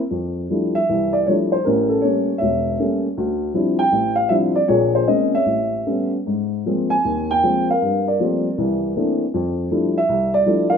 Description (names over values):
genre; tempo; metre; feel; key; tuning
solo jazz; 157 BPM; 4/4; swing 66% on 8ths, rubato; F major; A4 = 443 Hz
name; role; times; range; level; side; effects
dark upright piano; solo; 0.1-10.8 s; E1 to Ab5; -17 LUFS; equal; none
room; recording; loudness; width
moderate large studio reverb, RT60 1.3 s; minimal, uncompressed stereo recording; -17 LUFS; side -7 dB against mid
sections
0.1-10.8 A section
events
none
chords
0.1 Fmaj13; 1.7 A7b9; 3.2 Dm11; 4.7 Bbm9; 5.5 A9; 6.3 Ab69; 7.8 Gm11; 8.6 C13; 9.3 Fmaj13